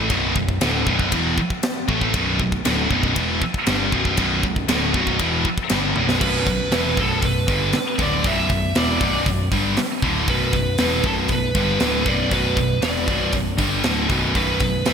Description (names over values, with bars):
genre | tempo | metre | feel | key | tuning
heavy metal | 118 BPM | 4/4 | straight | B minor | A4 = 440 Hz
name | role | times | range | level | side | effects
scooped high-gain guitar | riff | 0.0-14.9 s | B1 to A3 | -20 LUFS | equal | distortion
picked electric bass | bass | 0.0-14.9 s | B0 to A1 | -26 LUFS | equal | none
tight metal drum kit | drums | 0.1-14.9 s | crash cymbal, hi-hat, kick drum, ride cymbal, snare drum, toms | -24 LUFS | equal | none
high-gain lead guitar | melody | 6.2-14.9 s | A4 to E5 | -24 LUFS | right 1 dB | distortion, digital delay
room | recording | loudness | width
moderate lush hall reverb, RT60 1.9 s, small room ambience | bright 1980s-style digital production | -18 LUFS | side -7 dB against mid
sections
0.0-6.2 A section; 6.2-14.9 B section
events
drum fill 6.0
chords
0.0 Bm